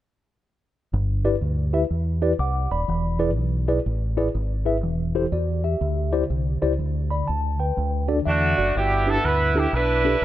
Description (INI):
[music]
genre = uptempo gospel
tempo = 123 BPM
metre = 4/4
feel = swing 65% on 8ths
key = G major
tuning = A4 = 439 Hz
[part]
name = mellow tine electric piano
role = accompaniment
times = 0.9-10.1 s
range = G2 to D6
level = -25 LUFS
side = left 1 dB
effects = medium stereo tremolo
[part]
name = deep dub fingered electric bass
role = bass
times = 0.9-10.2 s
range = Eb1 to E2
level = -24 LUFS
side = equal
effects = none
[part]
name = mellow horn section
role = melody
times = 8.3-10.2 s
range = A3 to B4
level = -20 LUFS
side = right 2 dB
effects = none
[sound]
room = light reverb, small room ambience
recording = dark, warm production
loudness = -20 LUFS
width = side -13 dB against mid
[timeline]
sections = 0.9-8.8 A section; 8.8-10.2 B section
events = none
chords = 0.9 G6; 2.9 E7; 4.8 A7(no3)/E (rootless); 5.8 D9sus4; 6.8 Gadd9/D; 7.8 D; 8.8 G6